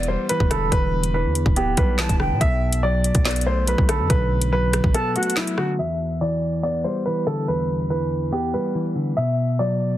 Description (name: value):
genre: hip hop, drill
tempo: 142 BPM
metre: 4/4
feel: half-time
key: E minor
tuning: A4 = 438 Hz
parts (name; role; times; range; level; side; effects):
- warm upright piano; melody; 0.0-10.0 s; E4 to E5; -24 LUFS; right 1 dB; ping-pong delay
- mellow electric guitar; accompaniment; 0.0-10.0 s; E2 to B3; -24 LUFS; left 2 dB; none
- distorted 808-style bass; bass; 0.0-4.9 s; D1 to B2; -23 LUFS; equal; distortion
- drill drum kit; drums; 0.0-10.0 s; handclaps, hi-hat, kick drum, rim click, snare drum; -22 LUFS; equal; none
- mellow concert flute; second line; 0.5-5.4 s; F#5 to B5; -30 LUFS; right 2 dB; ping-pong delay
room: digital ambience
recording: dense, heavily limited modern master, low-pass filter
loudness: -19 LUFS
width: side -13 dB against mid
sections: 0.0-5.8 A section; 5.8-10.0 B section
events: break 4.9-5.8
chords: 0.0 Em7; 2.4 Bm7; 5.8 Em7; 9.2 Bm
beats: 0.30 | 0.72 1.14 1.56 1.99 | 2.41 2.83 3.25 3.68 | 4.10 4.52 4.94 5.37 | 5.79 6.21 6.63 7.06 | 7.48 7.90 8.32 8.75 | 9.17 9.59